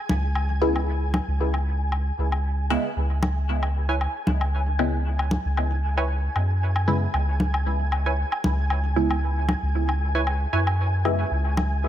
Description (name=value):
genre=dub techno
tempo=115 BPM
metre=4/4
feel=swing 54% on 16ths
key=C# minor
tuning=A4 = 440 Hz
part: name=flickering grainy texture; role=texture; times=0.0-11.9 s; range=G#5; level=-32 LUFS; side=equal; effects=built-in reverb
part: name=soft dub sub bass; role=bass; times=0.1-11.9 s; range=C#2 to F#2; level=-23 LUFS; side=equal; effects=none
part: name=congas and woodblock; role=percussion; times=0.1-11.7 s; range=none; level=-28 LUFS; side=left 2 dB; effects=dub echo
part: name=filtered dub chord stab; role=stabs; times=0.6-11.2 s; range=C#3 to E4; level=-28 LUFS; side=equal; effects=phaser, dub echo
part: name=wavetable chord stab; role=riff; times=3.9-10.6 s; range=E4 to G#5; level=-30 LUFS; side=right 3 dB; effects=dub echo
room=light reverb, digital ambience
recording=none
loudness=-21 LUFS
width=side -11 dB against mid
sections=0.0-11.9 A section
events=none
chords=0.0 C#m7